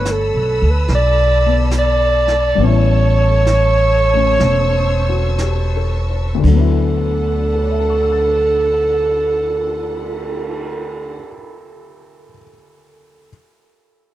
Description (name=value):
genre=jazz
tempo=55-73 BPM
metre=4/4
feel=swing 69% on 8ths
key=D major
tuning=A4 = 440 Hz
part: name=mellow alto saxophone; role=melody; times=0.0-11.2 s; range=A4 to D5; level=-17 LUFS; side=right 2 dB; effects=tape echo
part: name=dark baby grand piano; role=accompaniment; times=0.0-13.3 s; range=D2 to A6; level=-22 LUFS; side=left 10 dB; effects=none
part: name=warm studio string section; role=sustained chords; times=0.0-11.2 s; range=D4 to E6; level=-29 LUFS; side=right 1 dB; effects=none
part: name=upright bass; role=bass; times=0.0-11.2 s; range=E1 to D2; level=-17 LUFS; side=equal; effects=none
part: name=vintage brush drum kit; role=drums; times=0.1-10.6 s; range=brushed snare drum, crash cymbal, cymbal swell, hi-hat, kick drum, snare drum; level=-29 LUFS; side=right 2 dB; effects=none
room=little or no reverb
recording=dry, close 1970s-style studio recording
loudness=-13 LUFS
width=side -13 dB against mid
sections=0.0-6.5 A section; 6.5-10.8 B section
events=slowing down 0.0-6.5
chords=0.0 G69 (rootless); 2.6 A7; 6.5 D6